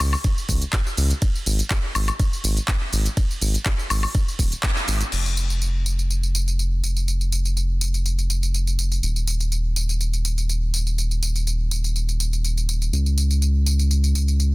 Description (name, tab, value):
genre	progressive house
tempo	123 BPM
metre	4/4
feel	straight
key	unclear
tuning	A4 = 441 Hz
part	round analog bass	bass	0.0-14.5 s	Eb1 to Db2	-20 LUFS	equal	sidechain pumping
part	pop drum kit	drums	0.0-14.5 s	crash cymbal, handclaps, hi-hat, ride cymbal, tambourine, woodblock	-26 LUFS	equal	none
part	electronic kick drum	drums	0.2-4.7 s	none	-21 LUFS	equal	none
room	little or no reverb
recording	dense, heavily limited modern master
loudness	-20 LUFS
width	side -23 dB against mid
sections	0.0-5.1 A section; 5.1-14.5 B section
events	drop 0.0-5.1; band accent 4.6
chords	none